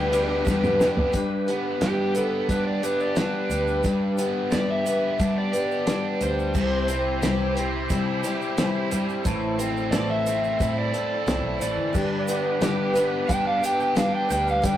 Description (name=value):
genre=folk rock and heartland rock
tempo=89 BPM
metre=4/4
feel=straight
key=G major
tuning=A4 = 440 Hz
part: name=overdriven slide guitar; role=melody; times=0.0-14.8 s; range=G4 to G5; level=-27 LUFS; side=equal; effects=none
part: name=picked steel-string acoustic guitar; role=accompaniment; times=0.0-14.8 s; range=A2 to C5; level=-26 LUFS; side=left 2 dB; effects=none
part: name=reed electric piano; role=accompaniment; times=0.0-1.1, 11.9-14.8 s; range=G4 to D5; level=-36 LUFS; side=right 4 dB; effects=none
part: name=bright tonewheel organ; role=sustained chords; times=0.0-14.8 s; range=D4 to D5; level=-36 LUFS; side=equal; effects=slow rotary speaker
part: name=crunchy overdriven guitar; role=riff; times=0.0-14.8 s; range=G2 to A4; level=-29 LUFS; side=right 1 dB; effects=none
part: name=vintage muted picked electric bass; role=bass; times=0.0-14.8 s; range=G1 to G3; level=-30 LUFS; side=right 1 dB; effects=none
part: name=cloth-damped thuddy drum kit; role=drums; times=0.1-14.8 s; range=crash cymbal, hi-hat, kick drum, ride cymbal, snare drum, toms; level=-28 LUFS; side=equal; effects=none
part: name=tube shaker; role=percussion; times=0.1-14.8 s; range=none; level=-41 LUFS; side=right 6 dB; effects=none
room=moderate small room reverb, RT60 0.6 s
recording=rough rehearsal-room recording, tube saturation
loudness=-21 LUFS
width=side -12 dB against mid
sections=0.0-1.1 A section; 1.1-14.8 B section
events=drum fill 0.5-1.1; electric slide guitar solo 1.1-14.8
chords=0.0 Gmaj7; 1.1 G; 6.5 C; 9.3 Am; 11.9 G